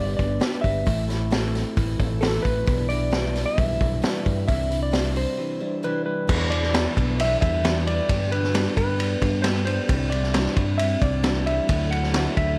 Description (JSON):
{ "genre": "folk rock and heartland rock", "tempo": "133 BPM", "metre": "4/4", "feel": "straight", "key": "unclear", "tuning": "A4 = 440 Hz", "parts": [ { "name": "clean lap steel guitar", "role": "melody", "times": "0.0-12.6 s", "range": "A4 to F#5", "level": "-30 LUFS", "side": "equal", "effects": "slapback echo, plate reverb" }, { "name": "picked twelve-string acoustic guitar", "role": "accompaniment", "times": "0.0-12.6 s", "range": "A2 to C5", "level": "-34 LUFS", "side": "equal", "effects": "plate reverb" }, { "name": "electric guitar through a small old amp", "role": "riff", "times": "0.0-12.6 s", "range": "E2 to G4", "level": "-32 LUFS", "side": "equal", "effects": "none" }, { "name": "fingered electric bass", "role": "bass", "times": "0.0-12.6 s", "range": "G1 to G2", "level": "-28 LUFS", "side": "equal", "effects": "none" }, { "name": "vintage drum kit", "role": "drums", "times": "0.2-12.5 s", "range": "crash cymbal, hi-hat, kick drum, ride cymbal, snare drum", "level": "-27 LUFS", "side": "equal", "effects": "none" } ], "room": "light reverb", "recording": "dark, warm production", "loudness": "-23 LUFS", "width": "mono", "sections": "0.0-6.3 A section; 6.3-12.6 B section", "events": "break 5.4-6.3", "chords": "0.0 G; 0.9 Am; 2.7 Em7/B; 4.5 Cadd9; 6.3 Em7; 8.1 G; 9.9 Cadd9; 11.7 Dadd9" }